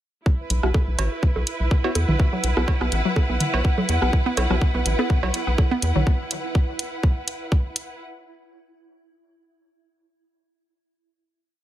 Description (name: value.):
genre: minimal techno.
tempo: 124 BPM.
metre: 4/4.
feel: swing 54% on 16ths.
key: unclear.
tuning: A4 = 441 Hz.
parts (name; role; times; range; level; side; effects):
electronic kick drum; drums; 0.3-7.6 s; none; -19 LUFS; equal; small room ambience.
warm studio string section; texture; 0.3-8.0 s; E4 to F#5; -28 LUFS; right 1 dB; sidechain pumping.
rubbery square bass; bass; 0.5-6.0 s; A1 to E2; -22 LUFS; equal; sidechain pumping.
electronic hi-hat; drums; 0.5-7.9 s; none; -27 LUFS; equal; small room ambience.
wavetable chord stab; stabs; 0.6-4.6 s; B3 to F#4; -32 LUFS; equal; none.
booming analog drum machine; percussion; 0.6-6.0 s; bongos, cowbell, rim click, toms; -29 LUFS; right 3 dB; small room ambience, dub echo.
hollow square pluck; riff; 2.3-6.0 s; F#3 to B3; -28 LUFS; left 1 dB; chorus, sidechain pumping, dub echo.
swarming drone; texture; 4.7-6.1 s; E4; -38 LUFS; right 5 dB; built-in reverb, sidechain pumping.
room: digital ambience.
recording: none.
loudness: -20 LUFS.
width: side -13 dB against mid.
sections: 0.3-8.0 groove.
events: none.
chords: 0.3 Bsus4.